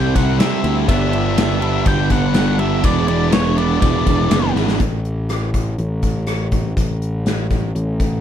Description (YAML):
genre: classic rock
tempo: 122 BPM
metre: 4/4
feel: straight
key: unclear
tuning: A4 = 440 Hz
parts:
  - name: octave-fuzz lead guitar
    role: melody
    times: 0.0-4.5 s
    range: C#5 to G5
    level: -23 LUFS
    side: left 1 dB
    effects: distortion
  - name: crunchy overdriven guitar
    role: riff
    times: 0.0-4.8 s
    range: G2 to G#4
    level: -20 LUFS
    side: right 13 dB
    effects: none
  - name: tight distorted guitar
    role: riff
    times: 0.0-4.8 s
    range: G2 to E4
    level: -23 LUFS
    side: left 16 dB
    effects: distortion
  - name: fuzz picked electric bass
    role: bass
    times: 0.0-8.2 s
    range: E1 to D2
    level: -19 LUFS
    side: left 1 dB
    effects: overdrive
  - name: gated 80s drum kit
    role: drums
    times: 0.2-8.1 s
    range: hi-hat, kick drum, ride cymbal, rim click, snare drum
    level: -19 LUFS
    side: left 1 dB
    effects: none
room: little or no reverb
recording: none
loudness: -15 LUFS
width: side -10 dB against mid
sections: 0.0-4.8 A section; 4.8-8.2 B section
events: drum fill 4.6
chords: 0.0 C; 0.9 G; 2.8 E7; 4.8 N.C.